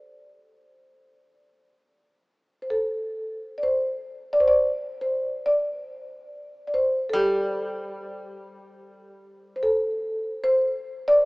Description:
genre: japanese traditional, Japanese chamber music.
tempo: 62-77 BPM.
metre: 4/4.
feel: rubato.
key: unclear.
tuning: A4 = 440 Hz.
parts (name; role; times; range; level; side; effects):
marimba with soft mallets; melody; 0.0-11.3 s; G4 to D5; -22 LUFS; equal; none.
koto; accompaniment; 7.1-9.6 s; G3; -33 LUFS; equal; none.
room: moderate cathedral reverb, RT60 4.8 s.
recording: small speaker sound.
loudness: -22 LUFS.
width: side -27 dB against mid.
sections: 0.0-3.6 A section; 3.6-11.3 B section.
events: none.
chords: none.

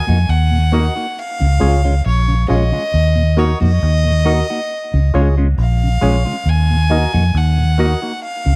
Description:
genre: reggae.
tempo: 68 BPM.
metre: 4/4.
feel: straight.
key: Eb minor.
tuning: A4 = 442 Hz.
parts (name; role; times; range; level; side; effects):
clear violin; melody; 0.0-8.6 s; Db5 to Ab5; -24 LUFS; equal; dub echo.
percussive organ stab; stabs; 0.0-8.0 s; F4 to Eb5; -24 LUFS; equal; chorus, phaser.
mellow tonewheel organ; accompaniment; 0.1-8.5 s; Eb2 to Gb4; -24 LUFS; equal; slow rotary speaker.
semi-hollow electric guitar; accompaniment; 0.1-8.1 s; Ab3 to Gb4; -26 LUFS; equal; phaser, dub echo.
vintage muted fingered electric bass; bass; 0.1-8.6 s; Bb1 to F2; -16 LUFS; equal; none.
room: little or no reverb.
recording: dry, close 1970s-style studio recording.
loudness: -16 LUFS.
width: mono.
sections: 0.0-8.6 A section.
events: none.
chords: 0.0 Ebm; 1.2 Db; 2.9 Ebm; 4.7 Db; 6.5 Ebm.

